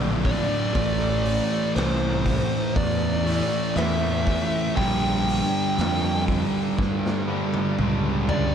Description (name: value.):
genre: stoner and doom metal.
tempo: 60 BPM.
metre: 4/4.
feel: straight.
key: unclear.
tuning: A4 = 440 Hz.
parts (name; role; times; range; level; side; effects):
distorted electric guitar; riff; 0.0-8.5 s; D2 to A3; -30 LUFS; left 1 dB; overdrive.
thick fuzz guitar; riff; 0.0-8.5 s; D2 to A3; -29 LUFS; left 9 dB; distortion.
thick fuzz guitar; riff; 0.0-8.5 s; D2 to A3; -28 LUFS; right 10 dB; distortion.
fuzz fingered electric bass; bass; 0.0-8.4 s; A1 to G2; -27 LUFS; equal; overdrive.
raw garage drum kit; drums; 0.2-8.5 s; hi-hat, kick drum, snare drum, toms; -29 LUFS; equal; none.
fuzz lead guitar; melody; 0.3-8.5 s; C5 to G5; -28 LUFS; equal; distortion, ping-pong delay.
room: little or no reverb.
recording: dark, warm production.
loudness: -21 LUFS.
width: side -8 dB against mid.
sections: 0.0-8.5 A section.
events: drum fill 6.8-8.5.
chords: 0.0 D5; 0.8 Am; 4.8 Gm/Bb.